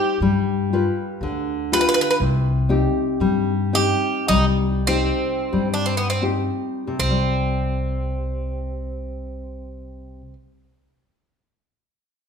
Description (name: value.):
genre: fado-style ballad.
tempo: 37-62 BPM.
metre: 2/4.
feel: rubato.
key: C harmonic minor.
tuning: A4 = 440 Hz.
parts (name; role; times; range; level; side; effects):
Greek bouzouki; melody; 0.0-10.3 s; B3 to B4; -23 LUFS; right 2 dB; none.
nylon-string guitar; accompaniment; 0.0-10.4 s; C3 to C5; -23 LUFS; left 3 dB; none.
upright bass; bass; 0.2-10.3 s; C2 to G2; -24 LUFS; equal; none.
room: wet recital hall reverb, RT60 1.4 s.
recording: minimal, uncompressed stereo recording.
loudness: -19 LUFS.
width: side -6 dB against mid.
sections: 0.0-7.0 A section; 7.0-12.3 B section.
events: slowing down 2.2-7.0.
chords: 0.2 G7; 2.2 Cm; 7.0 C5.